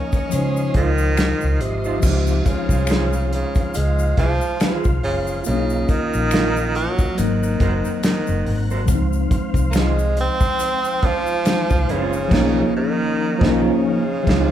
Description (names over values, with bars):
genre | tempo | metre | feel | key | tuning
R&B, neo-soul | 70 BPM | 4/4 | swing 57% on 16ths | Db major | A4 = 438 Hz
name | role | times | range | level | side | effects
breathy tenor saxophone | melody | 0.0-14.5 s | C3 to Db4 | -23 LUFS | right 1 dB | none
mellow tine electric piano | accompaniment | 0.0-14.5 s | F3 to C5 | -24 LUFS | left 2 dB | medium stereo tremolo
tonewheel organ | sustained chords | 0.0-14.5 s | C4 to Db6 | -32 LUFS | equal | chorus vibrato, slow rotary speaker
warm soul drum kit | drums | 0.1-14.5 s | crash cymbal, hi-hat, kick drum, snare drum | -21 LUFS | equal | none
egg shaker and finger snaps | percussion | 0.1-12.3 s | none | -35 LUFS | left 6 dB | none
vintage muted fingered electric bass | bass | 0.3-14.5 s | Gb1 to Db3 | -22 LUFS | equal | none
electric guitar through a small old amp | second line | 0.8-14.5 s | Db4 to C5 | -27 LUFS | right 6 dB | none
room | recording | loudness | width
moderate recital hall reverb, RT60 1.3 s | recorded in a church or concert hall | -17 LUFS | side -11 dB against mid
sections
0.0-2.0 A section; 2.0-14.5 A section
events
band accent 12.3-14.5; drum fill 14.0-14.5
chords
0.3 Dbmaj9; 2.0 Dbmaj7; 5.5 Cbmaj9#11; 7.2 Ab9; 8.9 Dbmaj7; 12.3 Cbmaj9#11